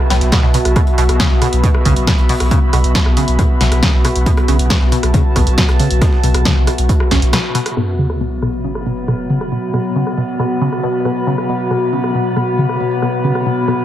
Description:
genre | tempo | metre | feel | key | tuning
driving peak-time techno | 137 BPM | 4/4 | straight | unclear | A4 = 440 Hz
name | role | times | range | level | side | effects
punchy analog drum machine | drums | 0.0-13.8 s | hi-hat, rim click, snare drum | -21 LUFS | equal | low-pass filter on snare, sidechain pumping on hats, low-pass filter on hats, low-pass filter on room
warbly tape-like pad | texture | 0.0-13.8 s | B3 to B5 | -20 LUFS | left 2 dB | chorus, built-in reverb, sidechain pumping
tight sequenced synth | riff | 0.1-13.7 s | A2 to C#3 | -20 LUFS | equal | chorus, tube saturation, sidechain pumping, tape echo
warm sub bass | bass | 0.1-7.3 s | B1 | -16 LUFS | equal | tube saturation, sidechain pumping, low-pass filter
breakbeat sampler-style drum kit | drums | 0.1-7.7 s | hi-hat, snare drum | -31 LUFS | right 1 dB | none
electronic kick drum | drums | 0.3-7.2 s | none | -14 LUFS | equal | none
metallic inharmonic drone | drone | 8.2-13.8 s | B2 to F#3 | -22 LUFS | equal | chorus, built-in reverb, sidechain pumping
sub drop | sound effects | 7.8-9.5 s | none | -23 LUFS | equal | none
room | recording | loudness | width
moderate spring reverb, RT60 1.6 s | echo-heavy mix | -12 LUFS | side -12 dB against mid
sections
0.0-7.8 A section; 7.8-13.8 B section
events
drop 0.0-7.8; break 7.3-7.8; band accent 7.3; impact 7.8-9.5; filter sweep on synth arpeggio sound 7.8-13.8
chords
0.0 B5

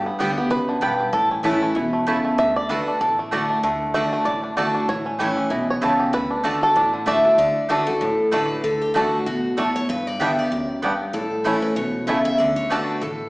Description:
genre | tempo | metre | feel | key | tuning
bluegrass | 192 BPM | 4/4 | swing 56% on 8ths | D major | A4 = 439 Hz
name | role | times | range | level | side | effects
bluegrass banjo | melody | 0.0-12.8 s | D3 to E5 | -22 LUFS | equal | none
picked steel-string acoustic guitar | accompaniment | 0.0-13.3 s | F#2 to G4 | -24 LUFS | equal | none
upright bass | bass | 0.0-13.3 s | E1 to D2 | -37 LUFS | equal | none
mandolin | stabs | 0.2-12.8 s | A3 to A5 | -27 LUFS | right 2 dB | none
picked steel-string acoustic guitar | melody | 7.1-13.3 s | F#4 to E5 | -22 LUFS | equal | none
room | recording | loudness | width
wet recital hall reverb, RT60 1.4 s | recorded in a church or concert hall, small speaker sound | -18 LUFS | side -22 dB against mid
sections
0.0-7.4 A section; 7.4-13.3 B section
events
five-string banjo solo 0.0-7.4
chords
0.0 G; 1.1 A; 2.4 D; 4.9 A; 6.1 D; 9.9 G; 11.1 A; 12.4 D

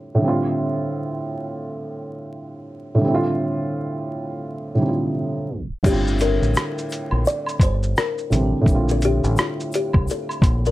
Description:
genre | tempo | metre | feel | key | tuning
lo-fi hip hop | 85 BPM | 4/4 | swing 62% on 16ths | unclear | A4 = 440 Hz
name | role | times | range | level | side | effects
felt-muted upright piano | accompaniment | 0.0-10.7 s | A2 to F4 | -23 LUFS | right 1 dB | cassette tape, low-pass filter, plate reverb
deep dub fingered electric bass | bass | 5.8-10.7 s | G1 to C2 | -21 LUFS | equal | none
lo-fi sampler-style drum kit | drums | 5.8-10.7 s | crash cymbal, hi-hat, kick drum, rim click, shaker | -20 LUFS | equal | vintage 12-bit sampler grit
tube shaker and woodblock | percussion | 5.8-10.6 s | none | -32 LUFS | equal | none
kalimba | melody | 5.9-10.7 s | F4 to D5 | -25 LUFS | left 4 dB | tape echo, plate reverb
room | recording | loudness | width
moderate studio reverb, RT60 0.6 s | vinyl crackle, tape stop | -19 LUFS | side -16 dB against mid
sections
0.0-5.8 A section; 5.8-10.7 B section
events
tape stop 5.5-5.8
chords
0.0 F69/A; 3.0 F13/A; 5.8 Gm9; 8.7 Bbmaj9

